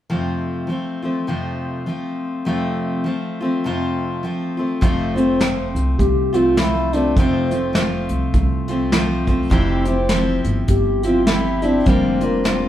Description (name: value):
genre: acoustic folk duo or small band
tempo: 102 BPM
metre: 4/4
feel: swing 59% on 8ths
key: F major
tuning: A4 = 440 Hz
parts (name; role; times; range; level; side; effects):
- picked steel-string acoustic guitar; accompaniment; 0.1-12.7 s; F2 to G4; -20 LUFS; left 1 dB; none
- upright bass; bass; 4.8-12.7 s; F1 to C2; -23 LUFS; right 1 dB; none
- soft brush drum kit; drums; 4.8-12.6 s; hi-hat, kick drum, snare drum; -20 LUFS; equal; none
- warm French horn; melody; 5.2-12.7 s; C4 to G4; -20 LUFS; left 1 dB; none
room: moderate large studio reverb, RT60 1.1 s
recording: band playing live in one room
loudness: -17 LUFS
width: side -12 dB against mid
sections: 0.1-4.8 A section; 4.8-12.7 B section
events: none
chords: 0.1 F; 9.5 C/F; 11.9 Bb6/F